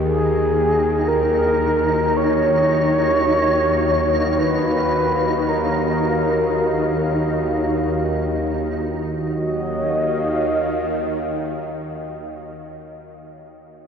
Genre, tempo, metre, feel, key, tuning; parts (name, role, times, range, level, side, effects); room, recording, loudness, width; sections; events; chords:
ambient; free time; Eb minor; A4 = 440 Hz
mellow horn-like synth lead; melody; 0.0-12.2 s; Ab4 to Eb5; -21 LUFS; equal; chorus, diffuse ambient delay
dark analog pad; sustained chords; 2.1-12.8 s; Gb4 to F5; -27 LUFS; equal; chorus
bowed-like drone; drone; 0.0-12.2 s; Eb2 to Eb3; -22 LUFS; equal; built-in reverb
flickering grainy texture; texture; 0.3-8.9 s; Eb4; -27 LUFS; right 1 dB; built-in reverb
wet huge ambient reverb, RT60 7.7 s; -17 LUFS; side -7 dB against mid
0.0-8.9 A section; 8.9-13.3 B section
0.0 Ebmadd9